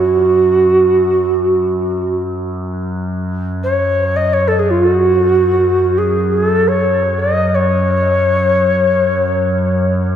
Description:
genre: world meditative, free-time meditation music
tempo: free time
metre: none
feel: none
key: F# kumoi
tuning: A4 = 437 Hz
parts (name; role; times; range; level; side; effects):
- mellow Native American-style cedar flute; melody; 0.0-10.1 s; F#4 to D#5; -13 LUFS; equal; tape echo
- overtone-sweeping drone; drone; 0.0-10.2 s; F#2; -18 LUFS; equal; chorus, built-in reverb
room: wet echo chamber reverb, RT60 1.6 s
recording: echo-heavy mix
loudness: -12 LUFS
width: side -9 dB against mid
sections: 0.0-2.7 A section; 2.7-10.2 A section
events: none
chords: none

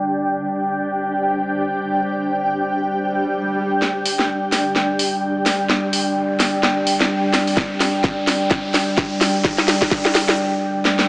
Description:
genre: bass house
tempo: 128 BPM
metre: 4/4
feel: swing 59% on 16ths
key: unclear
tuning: A4 = 440 Hz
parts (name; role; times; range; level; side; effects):
- dark analog pad; sustained chords; 0.0-11.1 s; G3 to G5; -22 LUFS; equal; chorus, sidechain pumping
- granular cloud pad; texture; 0.0-10.4 s; D4 to G5; -22 LUFS; equal; built-in reverb, sidechain pumping
- swell and riser; sound effects; 3.1-10.4 s; none; -31 LUFS; equal; none
- garage drum kit; drums; 3.8-11.1 s; hi-hat, snare drum; -18 LUFS; equal; none
- electronic kick drum; drums; 7.6-10.0 s; none; -22 LUFS; equal; none
room: moderate lush hall reverb, RT60 1.9 s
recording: low-pass filter, small speaker sound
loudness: -16 LUFS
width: side -24 dB against mid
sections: 0.0-3.8 A section; 3.8-11.1 B section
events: filter sweep on analog synth pad 0.0-3.8; filter sweep 0.0-3.8; swell 3.1-3.8; build-up 3.8-11.1; drum fill 3.8-10.4, 10.9; riser 5.1-10.4; break 10.4-11.1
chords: 0.0 G5

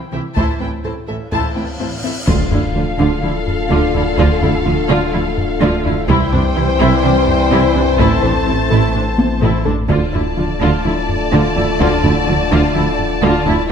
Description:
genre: cinematic, hybrid orchestral and electronic film score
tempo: 126 BPM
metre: 4/4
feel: straight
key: D minor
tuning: A4 = 440 Hz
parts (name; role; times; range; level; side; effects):
- soft round pluck; arpeggios; 0.0-13.6 s; C3 to A4; -25 LUFS; left 2 dB; none
- warm symphonic violin section; second line; 0.1-13.7 s; G4 to A5; -24 LUFS; left 5 dB; none
- warm symphonic viola section; accompaniment; 0.1-13.5 s; E3 to F4; -23 LUFS; equal; none
- rich symphonic double bass section; bass; 0.1-13.5 s; A1 to D2; -21 LUFS; right 3 dB; none
- warm symphonic cello section; bass; 0.1-13.5 s; A2 to D3; -22 LUFS; right 2 dB; none
- taiko ensemble; drums; 0.4-13.7 s; none; -21 LUFS; equal; none
- cymbal swell and impact; sound effects; 1.7-4.2 s; none; -24 LUFS; left 1 dB; none
- warm symphonic violin section; melody; 2.3-13.7 s; F5 to A5; -24 LUFS; left 4 dB; none
- clear trombone section; sustained chords; 2.3-13.7 s; D3 to A3; -24 LUFS; right 4 dB; none
- dark French horn section; sustained chords; 2.3-13.7 s; C4 to F4; -22 LUFS; left 7 dB; none
- dark tuba; bass; 2.3-13.6 s; A1 to D2; -22 LUFS; right 4 dB; none
- warm sub bass; bass; 2.3-13.7 s; D1 to C2; -23 LUFS; equal; none
room: moderate scoring stage reverb, RT60 1.5 s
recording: none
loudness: -13 LUFS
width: side -7 dB against mid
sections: 0.0-2.3 A section; 2.3-13.7 B section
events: cymbal swell 1.7-2.3; impact 2.3-4.2; drum fill 9.2-9.9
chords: 0.4 Am; 2.3 Dm; 6.1 C; 8.0 Am; 9.9 Dm

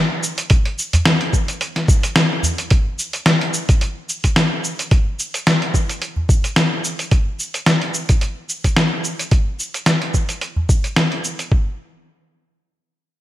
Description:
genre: downtempo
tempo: 109 BPM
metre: 4/4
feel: swing 56% on 16ths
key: none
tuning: none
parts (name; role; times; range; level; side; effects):
- dusty soul sampler-style drum kit; drums; 0.2-11.5 s; cabasa, hi-hat, snare drum; -18 LUFS; equal; overdrive, studio reverb, gated reverb
- electronic kick drum; drums; 0.5-11.6 s; none; -16 LUFS; equal; overdrive, studio reverb
- udu; percussion; 0.9-2.6, 6.2-6.3, 10.6-10.7 s; none; -19 LUFS; equal; none
room: light reverb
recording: bright 1980s-style digital production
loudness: -16 LUFS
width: side -14 dB against mid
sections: 0.0-2.7 A section; 2.7-11.5 B section; 11.5-13.2 C section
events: none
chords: none

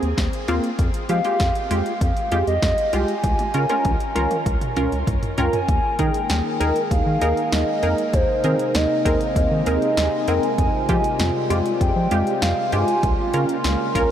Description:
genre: synth-pop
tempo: 98 BPM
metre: 4/4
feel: straight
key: Ab major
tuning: A4 = 440 Hz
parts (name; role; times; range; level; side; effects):
- funky polysynth comp; accompaniment; 0.0-14.1 s; Ab3 to Bb4; -24 LUFS; right 1 dB; chorus
- round analog bass; bass; 0.0-14.1 s; C2 to F3; -23 LUFS; equal; none
- punchy analog drum machine; drums; 0.0-14.1 s; hi-hat, kick drum, snare drum, toms; -25 LUFS; equal; none
- hollow clarinet-like synth lead; melody; 1.1-13.3 s; C5 to Ab5; -24 LUFS; equal; chorus, diffuse ambient delay
- sweeping resonant pad; sustained chords; 5.7-14.1 s; C3 to Ab4; -25 LUFS; equal; chorus, phaser
room: wet huge ambient reverb, RT60 8.2 s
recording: dreamy mix soaked in reverb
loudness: -18 LUFS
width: side -10 dB against mid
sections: 0.0-5.7 A section; 5.7-14.1 B section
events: drum fill 3.2-5.7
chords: 0.0 Abadd9/Eb (rootless); 0.8 Fmadd9; 3.2 Db6; 5.7 Ebsus4; 8.1 Abadd9/Eb; 10.6 Fmadd9; 13.0 Db6

